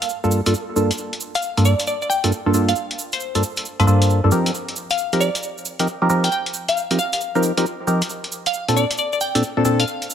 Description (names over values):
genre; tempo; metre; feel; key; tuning
UK garage, two-step garage; 135 BPM; 4/4; swing 66% on 16ths; G minor; A4 = 440 Hz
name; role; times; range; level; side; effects
glassy wavetable pluck; melody; 0.0-9.9 s; C5 to G5; -23 LUFS; left 1 dB; chorus, dub echo
electronic hi-hat; drums; 0.0-10.1 s; none; -25 LUFS; left 1 dB; none
cabasa; percussion; 0.0-10.1 s; none; -31 LUFS; right 4 dB; none
percussive organ stab; stabs; 0.2-9.8 s; G2 to Bb4; -19 LUFS; equal; chorus, phaser, dub echo
room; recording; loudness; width
light reverb; vinyl crackle; -18 LUFS; side -9 dB against mid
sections
0.0-10.1 A section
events
filter sweep on synth stab 0.0-10.1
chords
0.0 Gm9; 4.3 F9sus4; 8.1 Bbmaj7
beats
0.10 0.54 | 0.98 1.43 1.87 2.32 | 2.76 3.21 3.65 4.09 | 4.54 4.98 5.43 5.87 | 6.32 6.76 7.21 7.65 | 8.10 8.54 8.98 9.43 | 9.87